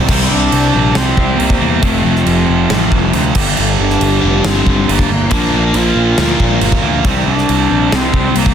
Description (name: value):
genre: hard rock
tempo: 138 BPM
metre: 4/4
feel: straight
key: unclear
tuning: A4 = 437 Hz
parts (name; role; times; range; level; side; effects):
- distorted electric guitar; riff; 0.0-8.5 s; F2 to C4; -17 LUFS; right 12 dB; overdrive
- overdriven electric guitar; riff; 0.0-8.5 s; F2 to C4; -18 LUFS; left 10 dB; phaser
- fuzz picked electric bass; bass; 0.0-8.5 s; F1 to E2; -17 LUFS; equal; overdrive
- gated 80s drum kit; drums; 0.1-8.5 s; crash cymbal, kick drum, snare drum; -16 LUFS; equal; soft clipping on kick, soft clipping on snare
- breathy bass clarinet; melody; 0.2-8.5 s; F3 to F4; -18 LUFS; equal; none
room: light reverb, small room ambience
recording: dense, heavily limited modern master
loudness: -10 LUFS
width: side -8 dB against mid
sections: 0.1-8.5 A section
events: none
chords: 0.1 C5; 1.8 F; 3.4 Gm; 5.3 Bb; 7.0 C5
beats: | 0.09 0.53 0.96 1.40 | 1.83 2.26 2.70 3.13 | 3.57 4.00 4.44 4.87 | 5.31 5.74 6.18 6.61 | 7.04 7.48 7.92 8.35